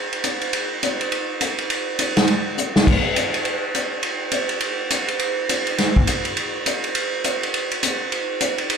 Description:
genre	jazz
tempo	206 BPM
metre	4/4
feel	swing 61% on 8ths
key	none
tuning	none
part	swinging big-band drum kit	drums	0.1-8.8 s	crash cymbal, hi-hat, kick drum, ride cymbal, snare drum	-19 LUFS	equal	none
room	light reverb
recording	live gig heard through the venue's PA, club ambience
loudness	-19 LUFS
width	side -6 dB against mid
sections	0.0-8.8 A section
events	drum fill 2.6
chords	none

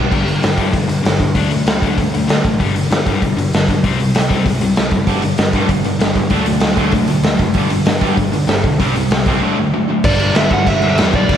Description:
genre	punk rock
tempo	194 BPM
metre	4/4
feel	straight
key	unclear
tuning	A4 = 438 Hz
part	distorted electric guitar	riff	0.0-0.1, 5.1-10.0 s	G2 to D4	-22 LUFS	right 10 dB	overdrive
part	overdriven electric guitar	riff	0.0-11.4 s	G2 to D4	-18 LUFS	left 5 dB	none
part	picked electric bass	bass	0.0-11.4 s	F#1 to G2	-21 LUFS	equal	none
part	raw garage drum kit	drums	0.1-11.4 s	crash cymbal, hi-hat, kick drum, snare drum	-15 LUFS	equal	none
part	dark smooth lead guitar	melody	10.0-11.4 s	D5 to F#5	-20 LUFS	right 4 dB	overdrive, tape echo
room	moderate lush hall reverb, RT60 1.8 s, studio reverb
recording	big arena sound, vinyl crackle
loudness	-13 LUFS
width	side -9 dB against mid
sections	0.1-10.0 A section; 10.0-11.4 B section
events	none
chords	0.1 G5; 1.4 D5; 2.6 G5; 3.8 C5; 5.1 G5; 6.3 D; 7.6 G5; 8.8 C5; 9.4 D; 10.0 G5

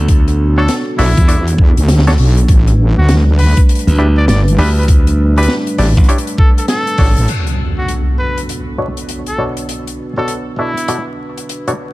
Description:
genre	glitch hop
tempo	100 BPM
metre	4/4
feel	swing 63% on 16ths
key	B minor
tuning	A4 = 441 Hz
part	dark analog pad	sustained chords	0.0-11.9 s	G3 to B4	-22 LUFS	right 1 dB	chorus, sidechain pumping
part	muted clav	stabs	0.0-11.7 s	B2 to E5	-22 LUFS	equal	sidechain pumping, low-pass filter, dub echo
part	glassy slap bass	bass	0.0-6.1 s	A1 to D2	-11 LUFS	equal	tube saturation
part	electronic kick drum	drums	0.1-7.1 s	none	-9 LUFS	equal	overdrive
part	open jazz drum kit	drums	0.1-11.8 s	crash cymbal, hi-hat, rim click, snare drum	-21 LUFS	left 2 dB	none
part	clear trumpet	melody	0.6-11.1 s	E4 to D5	-22 LUFS	left 1 dB	dub echo
part	wobble bass	bass	1.0-7.3 s	G1 to E2	-10 LUFS	equal	chorus
part	impact	sound effects	7.3-9.7 s	none	-20 LUFS	equal	none
room	little or no reverb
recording	vinyl crackle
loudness	-10 LUFS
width	side -19 dB against mid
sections	0.0-7.3 A section; 7.3-11.9 B section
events	impact 7.3-9.7; filter sweep on clav 7.3-11.9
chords	0.0 Bm7; 2.5 A9sus4; 7.3 Bm7

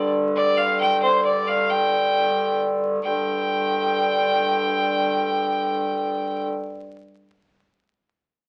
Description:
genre	medieval dance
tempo	free time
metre	none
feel	none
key	unclear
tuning	A4 = 440 Hz
part	bright fiddle	melody	0.0-6.4 s	C5 to G5	-24 LUFS	equal	none
part	dark hurdy-gurdy	drone	0.0-6.5 s	G2 to D3	-26 LUFS	equal	none
room	wet studio reverb, RT60 0.6 s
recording	very old 78 rpm record, vinyl crackle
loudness	-22 LUFS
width	mono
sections	0.0-3.0 A section; 3.0-5.7 B section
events	none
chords	none

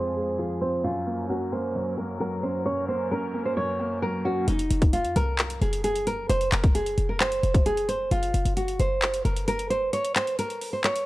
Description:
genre	hip hop, trap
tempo	132 BPM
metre	4/4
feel	half-time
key	F phrygian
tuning	A4 = 441 Hz
part	nylon-string guitar	melody	0.0-11.1 s	Eb4 to Db5	-26 LUFS	right 1 dB	low-pass filter
part	felt-muted upright piano	accompaniment	0.0-4.5 s	F2 to Db4	-32 LUFS	right 1 dB	low-pass filter
part	warm studio string section	sustained chords	0.0-4.4 s	F2 to Bb4	-39 LUFS	left 2 dB	none
part	short 808-style bass	bass	4.5-9.9 s	F1 to F2	-27 LUFS	equal	none
part	trap drum kit	drums	4.5-11.1 s	handclaps, hi-hat, kick drum	-25 LUFS	equal	none
room	small room ambience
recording	dry, gritty hardware recording, low-pass filter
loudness	-23 LUFS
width	side -18 dB against mid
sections	0.0-4.5 A section; 4.5-11.1 B section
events	filter sweep 0.0-4.5; kick muted 9.9-11.1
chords	0.0 Fm; 0.8 Gb; 4.5 F5; 8.1 Gb5

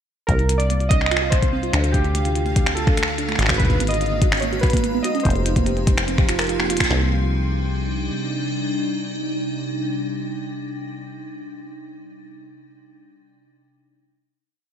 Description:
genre	IDM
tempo	145 BPM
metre	4/4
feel	straight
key	unclear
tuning	A4 = 440 Hz
part	warbly lo-fi synth keys	melody	0.3-6.4 s	G4 to Eb5	-26 LUFS	equal	chorus, digital delay
part	icy glass pad	sustained chords	1.5-10.9 s	C3 to Bb5	-28 LUFS	left 1 dB	chorus, built-in reverb, sidechain pumping
part	harp-like synth pluck	arpeggios	0.3-7.1 s	A3 to Bb4	-27 LUFS	right 6 dB	chorus, phaser, ping-pong delay
part	deep acid bass	bass	0.3-8.1 s	F1 to D2	-22 LUFS	equal	none
part	glitchy drum kit	drums	0.3-7.0 s	kick drum, snare drum	-19 LUFS	equal	none
part	glitchy drum kit	drums	0.3-6.9 s	finger snaps, hi-hat	-24 LUFS	left 1 dB	gated reverb
part	pulsing gated texture	texture	0.4-6.9 s	F5	-34 LUFS	right 2 dB	chorus, built-in reverb
room	light reverb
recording	bright 1980s-style digital production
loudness	-18 LUFS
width	side -9 dB against mid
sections	0.3-6.9 groove; 6.9-10.2 final chord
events	filter sweep on synth pluck 0.3-6.9; band accent 6.8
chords	0.3 Cm11; 1.7 Dm; 3.4 Abm11; 5.3 Fm11; 6.9 Cmadd9

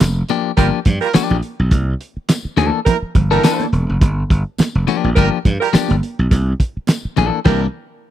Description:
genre	funk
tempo	105 BPM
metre	4/4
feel	swing 56% on 16ths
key	G dorian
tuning	A4 = 441 Hz
part	slap bass	bass	0.0-7.7 s	E1 to G2	-16 LUFS	equal	none
part	cloth-damped thuddy drum kit	drums	0.0-7.7 s	crash cymbal, handclaps, hi-hat, kick drum, snare drum	-14 LUFS	equal	none
part	congas	percussion	0.0-7.3 s	none	-25 LUFS	right 7 dB	none
part	tambourine	percussion	0.0-7.0 s	none	-31 LUFS	left 7 dB	none
part	clean electric guitar	accompaniment	0.3-7.7 s	E3 to A4	-18 LUFS	left 11 dB	none
part	warm horn section	second line	0.6-7.6 s	G3 to Bb4	-19 LUFS	right 7 dB	none
room	studio reverb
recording	dry, close 1970s-style studio recording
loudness	-14 LUFS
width	side -12 dB against mid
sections	0.0-8.1 A section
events	band accent 7.5-8.1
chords	0.0 Gm7; 1.7 C9 (rootless); 4.0 Gm7; 6.3 C9

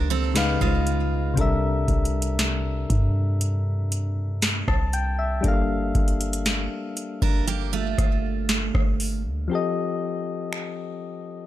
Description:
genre	contemporary R&B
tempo	59 BPM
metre	4/4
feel	straight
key	unclear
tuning	A4 = 440 Hz
part	soft electric-piano-like synth keys	accompaniment	0.0-11.5 s	C3 to A5	-27 LUFS	left 4 dB	chorus
part	picked steel-string acoustic guitar	arpeggios	0.0-9.2 s	Ab3 to Bb4	-28 LUFS	right 10 dB	digital delay
part	warm 808-style bass	bass	0.0-9.5 s	G1 to G2	-25 LUFS	equal	none
part	booming analog drum machine	drums	0.4-10.8 s	finger snaps, hi-hat, kick drum, rim click, snare drum	-24 LUFS	equal	none
room	little or no reverb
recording	none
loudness	-22 LUFS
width	side -13 dB against mid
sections	0.0-9.5 A section; 9.5-11.5 B section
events	break 9.5-11.5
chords	0.4 Db9; 1.4 C13; 5.4 Gm9; 9.5 F7

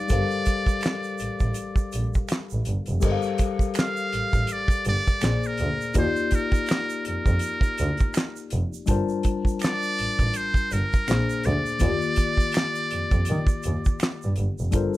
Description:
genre	R&B, neo-soul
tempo	82 BPM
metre	4/4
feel	swing 59% on 16ths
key	G minor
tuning	A4 = 440 Hz
part	trumpet with metal mute	melody	0.0-14.4 s	Bb4 to F5	-28 LUFS	right 1 dB	slapback echo
part	tine electric piano	accompaniment	0.0-15.0 s	Bb2 to A5	-29 LUFS	left 5 dB	none
part	muted double bass	bass	0.1-14.8 s	F1 to Eb3	-26 LUFS	right 1 dB	none
part	cloth-damped thuddy drum kit	drums	0.1-14.9 s	crash cymbal, handclaps, hi-hat, kick drum, snare drum	-24 LUFS	right 1 dB	none
part	egg shaker and finger snaps	percussion	0.1-15.0 s	none	-40 LUFS	right 7 dB	none
room	little or no reverb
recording	none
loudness	-22 LUFS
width	side -16 dB against mid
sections	0.0-3.0 A section; 3.0-15.0 B section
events	none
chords	0.1 Gm11; 5.2 Bb7; 5.9 Ebmaj9; 8.9 Gm11; 11.1 Bb7; 11.8 Ebmaj9

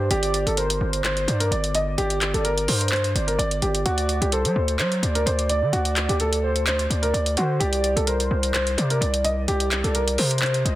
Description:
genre	hip hop, trap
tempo	128 BPM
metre	4/4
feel	half-time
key	G harmonic minor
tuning	A4 = 441 Hz
part	dark grand piano	melody	0.0-10.8 s	F#4 to Eb5	-25 LUFS	right 1 dB	tape echo
part	warm velvety synth lead	second line	0.0-10.8 s	C5 to Eb5	-29 LUFS	right 1 dB	chorus, tape echo
part	distorted 808-style bass	bass	0.0-10.8 s	G1 to F#3	-24 LUFS	equal	distortion
part	trap drum kit	drums	0.1-10.8 s	handclaps, hi-hat	-26 LUFS	equal	none
room	light reverb, digital ambience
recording	dense, heavily limited modern master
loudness	-20 LUFS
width	side -15 dB against mid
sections	0.0-10.8 A section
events	none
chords	0.0 Gm; 3.9 D; 7.6 C5

